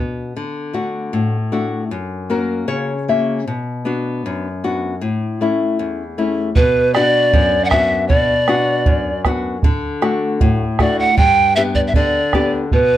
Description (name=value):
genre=andean folk, Andean ensemble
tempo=78 BPM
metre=2/4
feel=straight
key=B minor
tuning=A4 = 440 Hz
part: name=nylon-string guitar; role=accompaniment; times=0.0-13.0 s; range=E2 to E5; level=-19 LUFS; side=left 3 dB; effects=none
part: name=breathy reedy pan flute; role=melody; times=6.6-13.0 s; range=B4 to G5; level=-15 LUFS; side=right 1 dB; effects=plate reverb
part: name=bombo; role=percussion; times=6.6-12.9 s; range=none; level=-17 LUFS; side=right 2 dB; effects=none
room=moderate small room reverb, RT60 0.6 s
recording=worn, warbling old tape, cassette tape, warbly pitch drift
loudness=-15 LUFS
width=side -12 dB against mid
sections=0.4-6.6 A section; 6.6-13.0 B section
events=nylon-string guitar fill 1.9-3.5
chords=0.4 D; 1.9 F#; 3.5 Bm; 5.0 A; 6.6 Bm; 9.6 D; 11.2 G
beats=| 0.35 1.13 | 1.90 2.68 | 3.46 4.23 | 5.01 5.78 | 6.55 7.33 | 8.10 8.87 | 9.64 10.41 | 11.17 11.94 | 12.71